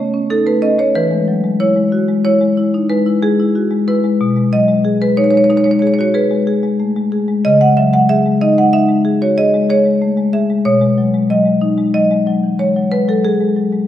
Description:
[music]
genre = classical, contemporary piece for solo marimba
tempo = 93 BPM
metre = 5/4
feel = rubato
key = unclear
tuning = A4 = 440 Hz
[part]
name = marimba with medium hard mallets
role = solo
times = 0.0-13.9 s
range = B2 to F#5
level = -12 LUFS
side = left 1 dB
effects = none
[sound]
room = wet recital hall reverb, RT60 1.5 s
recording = recorded in a church or concert hall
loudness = -12 LUFS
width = side -12 dB against mid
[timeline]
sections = 0.0-13.9 A section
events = none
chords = 0.0 Aadd9/C#; 1.0 Eadd9; 4.2 B69; 7.4 C#sus2; 10.7 B69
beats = 0.30 | 0.96 1.61 2.25 2.90 3.56 | 4.20 4.85 5.49 6.14 6.79 | 7.44 8.09 8.73 9.37 10.01 | 10.65 11.30 11.95 12.60 13.25

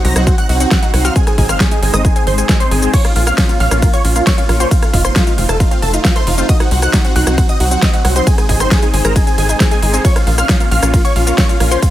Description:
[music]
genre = uplifting trance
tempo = 135 BPM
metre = 4/4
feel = straight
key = Bb minor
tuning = A4 = 440 Hz
[part]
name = big supersaw lead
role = melody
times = 0.0-11.9 s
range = F4 to Bb5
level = -19 LUFS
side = right 1 dB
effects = phaser, sidechain pumping, tape echo
[part]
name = wide unison pluck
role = second line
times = 0.0-11.9 s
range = F5 to Bb6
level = -24 LUFS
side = right 1 dB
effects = sidechain pumping, tape echo
[part]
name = analog pluck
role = arpeggios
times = 0.0-11.9 s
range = Ab3 to Ab4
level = -25 LUFS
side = left 4 dB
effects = chorus, sidechain pumping, tape echo
[part]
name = tight sequencer bass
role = bass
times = 0.0-11.8 s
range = F1 to C2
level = -15 LUFS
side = equal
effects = sidechain pumping
[part]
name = big-room dance drum kit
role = drums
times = 0.0-11.9 s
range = crash cymbal, hi-hat, ride cymbal, rim click, shaker, snare drum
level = -19 LUFS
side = equal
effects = overdrive, sidechain pumping on hats, sidechain pumping on perc, sidechain pumping on cymbals
[part]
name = electronic kick drum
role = drums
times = 0.3-11.9 s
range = none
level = -13 LUFS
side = equal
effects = overdrive
[sound]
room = digital ambience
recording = none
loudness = -10 LUFS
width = side -13 dB against mid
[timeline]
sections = 0.0-11.9 A section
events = none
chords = 0.0 Cdim; 1.2 Ab; 2.9 Bbm; 4.7 F7; 6.5 Cdim; 8.3 Ab; 10.0 Bbm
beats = 0.27 0.71 | 1.16 1.60 2.05 2.49 | 2.94 3.38 3.83 4.27 | 4.71 5.16 5.60 6.05 | 6.49 6.94 7.38 7.83 | 8.27 8.71 9.16 9.60 | 10.05 10.49 10.94 11.38 | 11.82

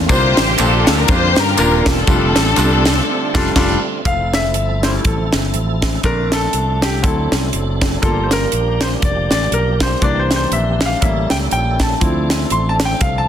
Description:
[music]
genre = uptempo gospel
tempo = 121 BPM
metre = 4/4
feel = swing 57% on 8ths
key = F major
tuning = A4 = 440 Hz
[part]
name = tonewheel organ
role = sustained chords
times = 0.0-13.3 s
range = D3 to A4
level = -25 LUFS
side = right 4 dB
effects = chorus vibrato, fast rotary speaker
[part]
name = fingered electric bass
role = bass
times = 0.0-13.3 s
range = Eb1 to G2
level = -19 LUFS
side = equal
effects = none
[part]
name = warm studio string section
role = melody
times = 0.1-3.8 s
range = C4 to C5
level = -17 LUFS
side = left 2 dB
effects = none
[part]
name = bright grand piano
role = accompaniment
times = 0.1-13.3 s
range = C3 to C6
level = -19 LUFS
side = left 2 dB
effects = none
[part]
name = crisp fusion drum kit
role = drums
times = 0.1-13.1 s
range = crash cymbal, hi-hat, kick drum, ride cymbal, snare drum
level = -18 LUFS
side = equal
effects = none
[part]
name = tambourine and handclaps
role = percussion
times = 0.1-3.0 s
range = none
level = -27 LUFS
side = right 4 dB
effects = none
[sound]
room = light reverb, studio ambience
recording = dense, heavily limited modern master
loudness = -13 LUFS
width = side -9 dB against mid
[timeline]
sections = 0.0-4.1 A section; 4.1-13.3 B section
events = band accent 3.1-4.1; grand piano solo 4.1-13.3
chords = 0.1 C9sus4; 2.1 F69; 4.1 Fmaj7; 6.0 Bbmaj7; 7.0 D7; 8.0 Gm7; 10.0 C7; 11.0 A7b9; 12.0 Dm7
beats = | 0.09 0.59 1.08 1.58 | 2.07 2.57 3.06 3.56 | 4.05 4.55 5.05 5.54 | 6.04 6.54 7.04 7.53 | 8.03 8.53 9.03 9.52 | 10.02 10.52 11.02 11.51 | 12.01 12.51 13.01

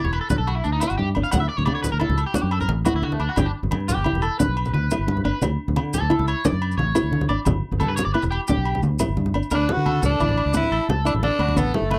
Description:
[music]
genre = highlife guitar band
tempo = 117 BPM (dotted quarters)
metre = 12/8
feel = straight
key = D major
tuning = A4 = 439 Hz
[part]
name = nylon-string guitar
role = accompaniment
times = 0.0-11.9 s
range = D4 to E4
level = -29 LUFS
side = equal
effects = none
[part]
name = electric guitar at the edge of break-up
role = arpeggios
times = 0.0-12.0 s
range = A3 to F#5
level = -30 LUFS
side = equal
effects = analog chorus, slapback echo
[part]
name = fingered electric bass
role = bass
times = 0.0-12.0 s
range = E1 to D3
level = -26 LUFS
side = equal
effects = none
[part]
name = congas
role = percussion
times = 0.0-12.0 s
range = none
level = -28 LUFS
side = equal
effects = none
[part]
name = agogo bells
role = percussion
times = 0.1-12.0 s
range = none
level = -36 LUFS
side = equal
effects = none
[part]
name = maracas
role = percussion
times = 0.3-11.6 s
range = none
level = -37 LUFS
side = equal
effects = none
[part]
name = raspy tenor saxophone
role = melody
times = 9.5-12.0 s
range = A3 to F#4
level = -25 LUFS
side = equal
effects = none
[sound]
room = light reverb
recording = dry, close 1970s-style studio recording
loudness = -22 LUFS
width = mono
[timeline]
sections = 0.0-9.5 A section; 9.5-12.0 B section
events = clean electric guitar solo 0.0-9.5; drum fill 0.5-1.3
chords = 0.0 G; 1.3 Dadd9; 3.4 G; 5.4 Dsus2; 7.5 G; 9.5 D5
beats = 0.31 0.82 | 1.33 1.84 2.35 2.87 | 3.38 3.89 4.40 4.91 | 5.42 5.93 6.45 6.96 | 7.47 7.98 8.49 9.00 | 9.52 10.03 10.54 11.05 | 11.57

